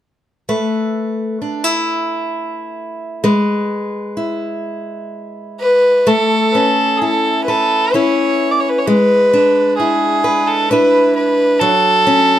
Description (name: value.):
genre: celtic folk, Celtic slow air.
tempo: 65 BPM.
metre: 3/4.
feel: rubato.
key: A major.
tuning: A4 = 441 Hz.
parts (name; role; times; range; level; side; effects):
fingerpicked steel-string acoustic guitar; accompaniment; 0.5-12.4 s; F#3 to B4; -17 LUFS; left 1 dB; none.
warm fiddle; melody; 5.6-12.4 s; G#4 to D5; -13 LUFS; equal; none.
room: light reverb.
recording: dark, warm production.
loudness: -12 LUFS.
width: side -11 dB against mid.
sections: 0.5-6.1 A section; 6.1-12.4 B section.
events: none.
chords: 0.5 Asus2; 3.2 E/G#; 6.1 Aadd9; 8.9 E7/G#; 11.6 F#m.